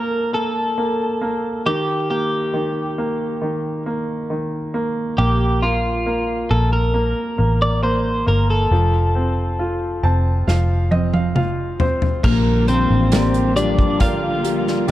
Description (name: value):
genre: pop ballad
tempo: 68 BPM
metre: 4/4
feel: straight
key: Bb major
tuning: A4 = 438 Hz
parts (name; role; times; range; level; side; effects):
- twelve-string electric guitar; melody; 0.0-14.9 s; Bb3 to F5; -21 LUFS; equal; spring reverb
- bright grand piano; accompaniment; 0.0-14.9 s; Eb3 to A5; -23 LUFS; right 1 dB; none
- vintage muted fingered electric bass; bass; 5.2-14.9 s; F1 to Bb1; -19 LUFS; equal; none
- natural country drum kit; drums; 10.5-14.9 s; crash cymbal, hi-hat, kick drum, snare drum, toms; -20 LUFS; equal; none
- warm studio string section; sustained chords; 12.2-14.9 s; D3 to F4; -25 LUFS; right 1 dB; none
- nylon-string guitar; arpeggios; 12.2-14.9 s; Bb2 to G4; -23 LUFS; left 8 dB; none
room: light reverb, studio ambience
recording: dark, warm production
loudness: -17 LUFS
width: side -14 dB against mid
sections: 0.0-12.2 A section; 12.2-14.9 B section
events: grand piano fill 9.6-12.2; drum fill 10.5-12.2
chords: 0.0 N.C.; 1.7 Eb; 5.2 Bb5; 8.7 F; 12.2 Bb6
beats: 0.77 | 1.65 2.53 3.42 4.30 | 5.18 6.06 6.95 7.83 | 8.71 9.59 10.47 11.36 | 12.24 13.12 14.01 14.89